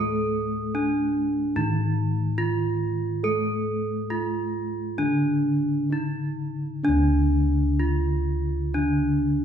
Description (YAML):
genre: Javanese gamelan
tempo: 63-77 BPM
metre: 4/4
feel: straight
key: unclear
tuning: A4 = 435 Hz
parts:
  - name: gamelan-type bronze metallophone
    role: melody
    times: 0.0-9.4 s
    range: D4 to A4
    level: -25 LUFS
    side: right 2 dB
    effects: none
  - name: gamelan-type bronze metallophone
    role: accompaniment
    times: 0.0-9.4 s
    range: D3 to A3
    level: -29 LUFS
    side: left 1 dB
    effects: none
  - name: gamelan-type bossed gongs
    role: bass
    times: 0.0-9.4 s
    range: D2 to A4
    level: -27 LUFS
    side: left 1 dB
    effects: none
room: wet recital hall reverb, RT60 1.5 s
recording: recorded in a church or concert hall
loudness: -22 LUFS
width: side -8 dB against mid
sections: 0.0-6.8 A section; 6.8-9.4 B section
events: none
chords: none